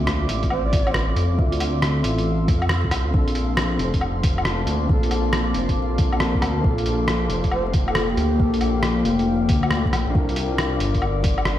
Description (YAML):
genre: future garage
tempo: 137 BPM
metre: 4/4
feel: swing 65% on 16ths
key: D minor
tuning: A4 = 437 Hz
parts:
  - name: muted felt-like synth keys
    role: accompaniment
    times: 0.0-11.6 s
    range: Bb3 to E5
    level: -26 LUFS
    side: left 2 dB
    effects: chorus, vintage 12-bit sampler grit, sidechain pumping, dub echo
  - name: deep dark ambient pad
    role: sustained chords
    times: 0.0-11.6 s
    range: Bb3 to E6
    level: -29 LUFS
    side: equal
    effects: chorus, built-in reverb, sidechain pumping
  - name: dark detuned saw bass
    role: bass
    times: 0.0-11.6 s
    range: F1 to F2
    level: -23 LUFS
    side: equal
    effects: tube saturation, sidechain pumping
  - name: sub drop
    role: sound effects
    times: 0.0-1.4 s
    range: none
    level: -33 LUFS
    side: equal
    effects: none
  - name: flickering grainy texture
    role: texture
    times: 0.0-11.6 s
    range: F4 to F5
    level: -35 LUFS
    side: equal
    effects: built-in reverb
  - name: lo-fi sampler-style drum kit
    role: drums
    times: 0.1-11.6 s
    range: hi-hat, rim click, woodblock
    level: -26 LUFS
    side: equal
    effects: none
  - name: electronic kick drum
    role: drums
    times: 0.4-11.4 s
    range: none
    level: -20 LUFS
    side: equal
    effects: none
  - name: breathy flute-like synth lead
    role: melody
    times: 0.5-0.9, 7.5-8.7 s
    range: G4 to D5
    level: -29 LUFS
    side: right 1 dB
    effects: wide subtle chorus, ping-pong delay
room: light reverb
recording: played on a big sound system in a bare room, stone room reverb, vinyl crackle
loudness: -18 LUFS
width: side -12 dB against mid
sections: 0.0-11.6 A section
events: impact 0.0-1.4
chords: 0.0 Dm7; 3.1 Bbmaj9; 6.6 Gm7; 10.1 C9sus4